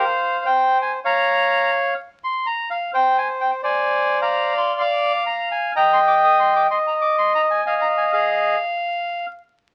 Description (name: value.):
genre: tango.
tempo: 127 BPM.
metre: 4/4.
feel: rubato.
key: unclear.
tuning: A4 = 438 Hz.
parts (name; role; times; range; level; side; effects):
bandoneon; solo; 0.0-9.3 s; Ab4 to Eb6; -19 LUFS; equal; none.
room: moderate small room reverb, RT60 0.5 s.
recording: very old 78 rpm record, vinyl crackle.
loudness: -19 LUFS.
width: mono.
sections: 0.0-9.7 A section.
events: none.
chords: 0.1 N.C.; 1.0 Bbm; 2.0 N.C.; 2.9 Abmaj7#11/C; 3.9 Bb9/C; 5.8 Eb; 6.7 N.C.; 7.6 Fm7; 8.6 N.C..